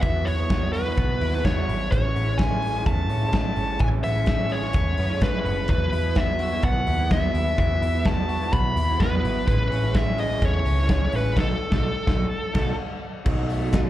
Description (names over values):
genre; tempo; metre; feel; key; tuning
jangly indie pop; 127 BPM; 4/4; straight; E major; A4 = 440 Hz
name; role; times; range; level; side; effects
bluesy overdriven lead guitar; melody; 0.0-12.8 s; A4 to B5; -27 LUFS; left 1 dB; distortion, tape echo
electric guitar through a small old amp; accompaniment; 0.0-13.9 s; A2 to E4; -31 LUFS; right 6 dB; ensemble chorus, slapback echo
electric guitar through a small old amp; arpeggios; 0.0-13.9 s; E3 to G#4; -34 LUFS; left 4 dB; slapback echo
vintage muted picked electric bass; bass; 0.0-13.9 s; F#1 to A2; -26 LUFS; equal; none
big rock drum kit; drums; 0.0-13.8 s; crash cymbal, hi-hat, kick drum, ride cymbal, snare drum; -25 LUFS; equal; none
vibraphone with soft mallets; second line; 13.2-13.9 s; D#4 to F#4; -32 LUFS; equal; none
group handclap; percussion; 13.7-13.8 s; none; -39 LUFS; left 2 dB; none
room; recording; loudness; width
light reverb; live gig heard through the venue's PA, club reverb, faint mains hum; -20 LUFS; side -14 dB against mid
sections
0.0-13.3 A section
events
band accent 11.4-13.3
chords
0.0 Esus2; 1.9 Amaj7; 5.7 Esus2; 9.5 Amaj7; 11.4 B7